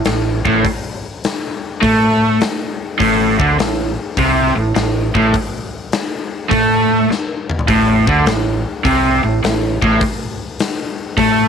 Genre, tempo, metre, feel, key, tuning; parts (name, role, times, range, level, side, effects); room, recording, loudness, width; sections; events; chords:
blues rock power trio and southern rock; 102 BPM; 4/4; swing 67% on 8ths; A4 = 441 Hz
raw garage guitar; riff; 0.0-11.5 s; A2 to A3; -14 LUFS; right 1 dB; overdrive
growling fingered electric bass; bass; 0.0-11.5 s; A1 to A2; -19 LUFS; equal; overdrive
huge arena drum kit; drums; 0.0-11.4 s; hi-hat, kick drum, snare drum, toms; -20 LUFS; left 3 dB
light reverb, small room ambience; 1960s-style stereo; -13 LUFS; side -7 dB against mid
0.0-11.5 A section
drum fill 7.1-7.7
0.0 Am